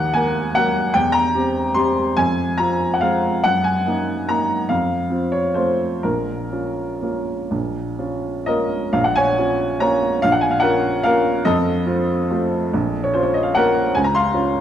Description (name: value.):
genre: classical, piano waltz.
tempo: 118-159 BPM.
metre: 3/4.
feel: rubato.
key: Bb minor.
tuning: A4 = 442 Hz.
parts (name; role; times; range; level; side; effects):
clear upright piano; solo; 0.0-14.6 s; Bb1 to C6; -17 LUFS; equal; none.
room: wet recital hall reverb, RT60 1.4 s.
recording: dark, warm production.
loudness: -17 LUFS.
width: side -10 dB against mid.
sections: 0.0-9.0 A section; 9.0-14.6 A section.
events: none.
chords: 0.0 Ebm; 0.9 C7/E; 2.2 Fm; 3.4 Ebm/Gb; 4.7 F; 6.0 Bbm; 11.5 F7; 12.7 Bbm; 14.0 Db.